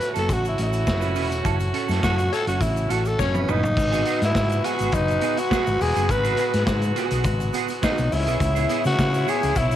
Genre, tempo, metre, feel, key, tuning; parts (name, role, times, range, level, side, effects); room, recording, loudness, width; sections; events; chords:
disco; 104 BPM; 4/4; straight; A4 = 439 Hz
growling tenor saxophone; melody; 0.0-9.8 s; C#4 to B4; -24 LUFS; equal
clean electric guitar; accompaniment; 0.0-9.7 s; B3 to B4; -29 LUFS; right 12 dB; ensemble chorus
muted French horn section; sustained chords; 0.0-9.8 s; C#3 to F#4; -30 LUFS; right 1 dB
vintage drum kit; drums; 0.0-9.8 s; crash cymbal, hi-hat, kick drum, snare drum, toms; -27 LUFS; left 1 dB
tube shaker; percussion; 0.0-9.8 s; -46 LUFS; left 17 dB
hollow-body short-scale fingered electric bass; bass; 0.2-9.8 s; E1 to C#3; -24 LUFS; left 1 dB; transformer saturation
warm horn section; stabs; 2.3-9.8 s; G#3 to C#5; -31 LUFS; left 13 dB
light reverb; 1960s-style stereo with parts hard left and right; -20 LUFS; side -11 dB against mid
0.0-3.8 A section; 3.8-9.8 B section
tenor saxophone solo 0.0-3.8; band accent 1.5-3.8; drum fill 3.2-3.8
0.0 F#m7; 3.8 G#m7; 8.1 C#m7